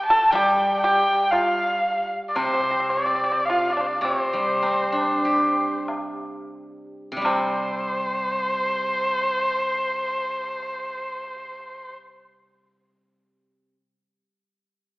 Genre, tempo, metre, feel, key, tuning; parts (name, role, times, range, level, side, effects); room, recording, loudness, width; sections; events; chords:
chinese traditional, Chinese chamber ensemble; 43-62 BPM; 4/4; rubato; A4 = 443 Hz
dark erhu; melody; 0.0-11.9 s; C5 to A5; -23 LUFS; equal
pipa; second line; 0.0-11.9 s; C4 to A4; -25 LUFS; right 1 dB
steel-string zither; accompaniment; 0.3-13.7 s; C3 to G4; -26 LUFS; equal
woodblock; percussion; 0.3-7.9 s; -32 LUFS; left 1 dB
wet recital hall reverb, RT60 1.6 s; recorded in a church or concert hall, AM radio sound; -20 LUFS; side -21 dB against mid
0.0-7.2 A section; 7.2-12.7 B section
slowing down 0.0-7.2